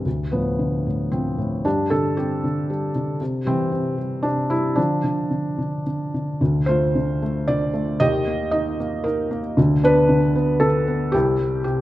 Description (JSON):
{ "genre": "classical, lyrical solo piano", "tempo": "114 BPM", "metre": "3/4", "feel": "rubato", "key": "D dorian", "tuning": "A4 = 440 Hz", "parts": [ { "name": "felt-muted upright piano", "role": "solo", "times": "0.0-11.8 s", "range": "C2 to Eb5", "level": "-19 LUFS", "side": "equal", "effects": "none" } ], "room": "moderate concert hall reverb, RT60 1.9 s", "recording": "none", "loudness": "-19 LUFS", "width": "side -15 dB against mid", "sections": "0.0-6.4 A section; 6.4-11.8 A section", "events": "none", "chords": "0.1 Dm; 1.7 Gsus4; 3.2 C; 4.8 Dm; 6.4 Dm7; 8.0 Eb; 9.6 Bm7/D; 11.1 C" }